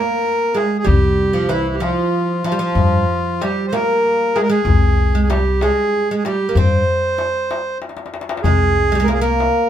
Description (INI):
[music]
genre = Arabic maqam ensemble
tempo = 63 BPM (dotted quarters)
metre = 6/8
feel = straight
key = C maqam hijaz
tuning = A4 = 439 Hz
[part]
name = accordion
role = melody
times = 0.0-9.7 s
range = E4 to C5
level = -18 LUFS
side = right 1 dB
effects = none
[part]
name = oud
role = second line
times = 0.0-9.7 s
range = E3 to C4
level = -20 LUFS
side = right 2 dB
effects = none
[part]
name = darbuka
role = percussion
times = 0.2-9.5 s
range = none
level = -20 LUFS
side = left 3 dB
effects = none
[part]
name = upright bass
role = bass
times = 0.9-9.5 s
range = C2 to G2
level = -18 LUFS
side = left 1 dB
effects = none
[sound]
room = moderate studio reverb, RT60 0.7 s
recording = band playing live in one room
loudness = -14 LUFS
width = side -10 dB against mid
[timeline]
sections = 0.0-8.4 A section; 8.4-9.7 B section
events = drum fill 7.8-8.4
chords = none